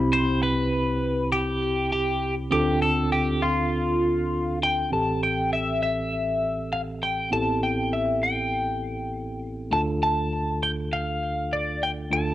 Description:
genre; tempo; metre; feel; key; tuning
pop; 100 BPM; 4/4; straight; A minor; A4 = 440 Hz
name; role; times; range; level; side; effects
mellow tine electric piano; accompaniment; 0.0-12.3 s; A1 to B5; -26 LUFS; equal; medium stereo tremolo, cassette tape
twelve-string electric guitar; melody; 0.1-12.3 s; F4 to A5; -25 LUFS; left 1 dB; phaser, cassette tape
room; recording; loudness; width
light reverb, digital ambience; home recording on cassette; -22 LUFS; side -14 dB against mid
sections
0.0-4.9 A section; 4.9-12.3 B section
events
none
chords
0.0 Cmaj7; 2.5 Dm7; 4.9 Am7; 9.7 Dm

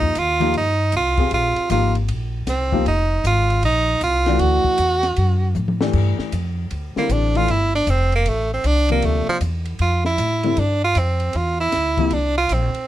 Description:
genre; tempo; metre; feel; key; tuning
modal jazz; 156 BPM; 4/4; swing 65% on 8ths; G dorian from 5.9 s; A4 = 440 Hz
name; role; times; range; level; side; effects
bright tenor saxophone; melody; 0.0-12.9 s; F3 to F#4; -20 LUFS; right 3 dB; none
clear upright piano; accompaniment; 0.0-12.1 s; C3 to Ab4; -23 LUFS; left 5 dB; none
upright bass; bass; 0.0-12.8 s; F1 to A2; -21 LUFS; equal; none
compact cocktail drum kit; drums; 0.0-12.8 s; crash cymbal, hi-hat, kick drum, ride cymbal, snare drum, toms; -30 LUFS; left 2 dB; none
room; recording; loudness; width
little or no reverb; close, detailed microphones; -17 LUFS; side -13 dB against mid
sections
0.0-5.9 A section; 5.9-12.9 B section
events
drum fill 5.6-5.9; tenor saxophone solo 5.9-12.9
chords
0.0 Bb13sus4; 4.4 D; 5.9 G9sus4; 12.1 C9sus4

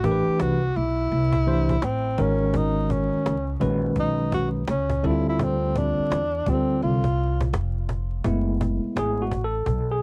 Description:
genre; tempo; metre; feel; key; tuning
hip hop, jazz-hop; 84 BPM; 4/4; swing 64% on 16ths; unclear; A4 = 440 Hz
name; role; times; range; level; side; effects
breathy tenor saxophone; melody; 0.0-7.5 s; C4 to G4; -29 LUFS; equal; cassette tape
tine electric piano; accompaniment; 0.0-10.0 s; D3 to C5; -27 LUFS; equal; cassette tape
upright bass; bass; 0.0-10.0 s; F1 to E2; -28 LUFS; equal; none
cajon; drums; 0.0-9.9 s; none; -32 LUFS; equal; cassette tape
room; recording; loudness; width
light reverb; home recording on cassette, vinyl crackle; -24 LUFS; mono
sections
0.0-8.2 A section; 8.2-10.0 B section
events
tine electric piano solo 8.2-10.0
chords
0.0 Am11; 2.2 G#m11; 5.0 Dm11; 8.2 F#m11

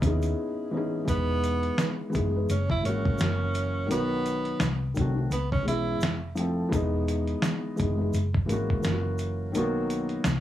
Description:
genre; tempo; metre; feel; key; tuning
lo-fi hip hop; 85 BPM; 4/4; swing 57% on 16ths; unclear; A4 = 440 Hz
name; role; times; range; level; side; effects
felt-muted upright piano; accompaniment; 0.0-10.3 s; D#3 to B4; -29 LUFS; left 1 dB; cassette tape
vintage muted picked electric bass; bass; 0.0-10.4 s; E1 to D#2; -30 LUFS; equal; none
dusty soul sampler-style drum kit; drums; 0.0-10.4 s; hi-hat, kick drum, snare drum; -29 LUFS; equal; overdrive
tube shaker; percussion; 0.0-10.4 s; none; -50 LUFS; right 8 dB; none
breathy tenor saxophone; melody; 1.1-6.2 s; B3 to E4; -31 LUFS; right 3 dB; analog delay
room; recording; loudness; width
light reverb; cassette tape, small room ambience; -25 LUFS; side -12 dB against mid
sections
0.0-1.1 A section; 1.1-10.4 B section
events
break 0.4-1.1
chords
0.0 C#m9; 1.1 Emaj7; 2.5 F#9; 3.2 F#7; 3.9 Bmaj7; 4.6 Cdim7; 5.3 C#m7; 6.0 Fmaj7; 6.7 Emaj7; 8.1 F#9; 8.8 F#7; 9.6 Bmaj7

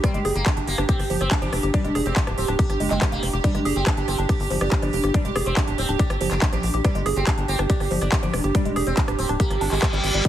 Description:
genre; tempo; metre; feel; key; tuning
psychedelic trance; 141 BPM; 4/4; straight; G phrygian; A4 = 439 Hz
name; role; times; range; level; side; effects
sitar; melody; 0.0-10.3 s; G3 to D4; -29 LUFS; left 1 dB; phaser, sidechain pumping, ping-pong delay
pulsing gated texture; sustained chords; 0.0-10.3 s; G4 to C5; -29 LUFS; right 8 dB; chorus, built-in reverb, sidechain pumping
woody wave-folded pluck; riff; 0.0-10.3 s; F3 to Ab4; -28 LUFS; moving between left 4 dB and right 3 dB; chorus, auto-pan, cassette tape, sidechain pumping, ping-pong delay
big-room dance drum kit; drums; 0.0-10.3 s; handclaps, hi-hat, rim click; -29 LUFS; equal; studio reverb
electronic kick drum; drums; 0.0-10.3 s; none; -23 LUFS; equal; studio reverb
tight sequencer bass; bass; 0.1-10.2 s; D1 to Bb1; -26 LUFS; equal; none
reverse cymbal; sound effects; 9.6-10.2 s; none; -25 LUFS; left 2 dB; none
room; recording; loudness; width
light reverb; heavily compressed radio sound; -19 LUFS; side -11 dB against mid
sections
0.0-10.3 A section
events
reverse cymbal 9.6-10.2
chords
0.0 G5

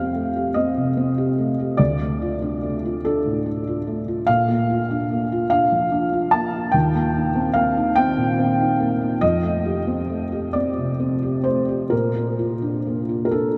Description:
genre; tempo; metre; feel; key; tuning
neoclassical minimalist piano; 42-50 BPM (dotted quarters); 6/8; rubato; Bb major; A4 = 440 Hz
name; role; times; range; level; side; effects
felt-muted upright piano; solo; 0.0-13.6 s; D2 to A5; -21 LUFS; equal; none
room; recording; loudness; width
wet huge ambient reverb, RT60 8.0 s; in a vast, echoing space; -21 LUFS; mono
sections
0.0-13.6 A section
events
none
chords
0.0 Fadd9; 1.8 Dm; 4.3 Bb; 6.7 Eb6; 9.2 Fadd9; 11.9 Bb

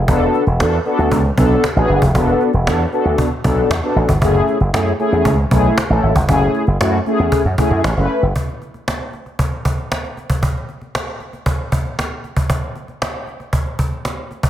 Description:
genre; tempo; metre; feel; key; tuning
early-eighties boogie funk; 116 BPM; 4/4; straight; F# minor; A4 = 441 Hz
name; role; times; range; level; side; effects
slap bass with an envelope filter; bass; 0.0-8.3 s; E1 to F#2; -16 LUFS; equal; none
mellow synth brass; accompaniment; 0.1-8.2 s; A3 to B4; -17 LUFS; left 1 dB; chorus
cajon; drums; 0.1-14.5 s; none; -20 LUFS; equal; none
room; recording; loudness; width
light reverb, small room ambience; none; -14 LUFS; side -11 dB against mid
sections
0.0-8.4 A section; 8.4-14.5 B section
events
none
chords
0.1 E9sus4; 4.2 F#m9; 8.4 N.C.

